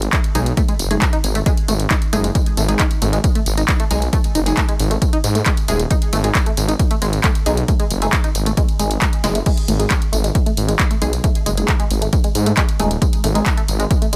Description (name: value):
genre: driving peak-time techno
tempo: 135 BPM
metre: 4/4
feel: straight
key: G# phrygian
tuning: A4 = 440 Hz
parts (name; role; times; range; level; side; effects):
- detuned saw bass; bass; 0.0-14.2 s; D#1 to G#2; -21 LUFS; equal; sidechain pumping
- punchy analog drum machine; drums; 0.0-14.2 s; crash cymbal, handclaps, hi-hat, ride cymbal, snare drum, tambourine; -26 LUFS; equal; sidechain pumping on hats, sidechain pumping on cymbals, sidechain pumping on perc
- tight sequenced synth; riff; 0.1-14.2 s; G#3 to D#4; -28 LUFS; equal; chorus, sidechain pumping, tape echo
- electronic kick drum; drums; 0.1-14.0 s; none; -20 LUFS; equal; none
- filtered dub chord stab; stabs; 0.3-13.5 s; G#3 to G#4; -27 LUFS; equal; phaser, lush chorus, sidechain pumping, digital delay
room: little or no reverb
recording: none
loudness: -17 LUFS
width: mono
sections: 0.0-14.2 A section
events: drum fill 9.2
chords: 0.0 G#5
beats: 0.13 | 0.57 1.02 1.46 1.91 | 2.35 2.79 3.24 3.68 | 4.13 4.57 5.02 5.46 | 5.91 6.35 6.79 7.24 | 7.68 8.13 8.57 9.02 | 9.46 9.91 10.35 10.79 | 11.24 11.68 12.13 12.57 | 13.02 13.46 13.91